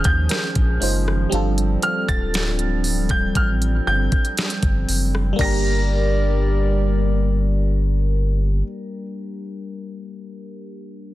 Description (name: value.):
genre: contemporary R&B.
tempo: 59 BPM.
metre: 4/4.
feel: straight.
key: G minor.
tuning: A4 = 440 Hz.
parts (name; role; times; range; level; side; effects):
warm grand piano; melody; 0.0-8.6 s; F6 to Bb6; -26 LUFS; right 1 dB; tape echo.
FM electric piano; accompaniment; 0.0-11.1 s; G3 to C5; -27 LUFS; left 2 dB; chorus, phaser.
hollow soft pad; sustained chords; 0.0-8.6 s; Eb3 to D5; -28 LUFS; right 2 dB; chorus.
warm sub bass; bass; 0.0-8.6 s; D1 to Eb2; -20 LUFS; equal; none.
smooth R&B drum kit; drums; 0.0-5.6 s; crash cymbal, hi-hat, kick drum, rim click, snare drum; -22 LUFS; equal; none.
soft round pluck; texture; 0.3-8.6 s; Bb4; -38 LUFS; right 6 dB; none.
room: little or no reverb.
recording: dense, heavily limited modern master.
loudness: -18 LUFS.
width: side -16 dB against mid.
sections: 0.0-5.4 A section; 5.4-9.5 B section.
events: none.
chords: 0.0 Eb9sus4; 1.3 G9sus4; 5.4 Gm.